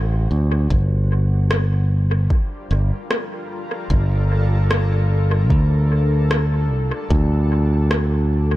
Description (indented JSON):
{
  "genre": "ambient dub",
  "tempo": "75 BPM",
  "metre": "4/4",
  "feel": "swing 56% on 16ths",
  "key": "G minor",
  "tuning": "A4 = 440 Hz",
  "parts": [
    { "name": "granular cloud pad", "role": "sustained chords", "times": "0.1-8.6 s", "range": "G3 to C5", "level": "-29 LUFS", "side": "left 2 dB", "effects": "built-in reverb" },
    { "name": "modern bright fingered electric bass", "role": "bass", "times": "0.0-8.6 s", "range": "G1 to D2", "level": "-16 LUFS", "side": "equal", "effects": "none" },
    { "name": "electronic kick drum", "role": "drums", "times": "0.7-7.3 s", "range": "none", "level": "-19 LUFS", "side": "equal", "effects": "overdrive" },
    { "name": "electronic rim click", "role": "drums", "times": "1.5-8.1 s", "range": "none", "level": "-25 LUFS", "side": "equal", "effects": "overdrive, dub echo" }
  ],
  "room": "little or no reverb",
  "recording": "echo-heavy mix",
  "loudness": "-16 LUFS",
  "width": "side -16 dB against mid",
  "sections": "0.0-8.6 A section",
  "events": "fade-in on ambient pad 0.0-8.6",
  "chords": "0.0 D7; 0.7 Gm7; 7.1 D",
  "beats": "| 0.71 1.51 2.31 3.11 | 3.91 4.71 5.51 6.31 | 7.11 7.91"
}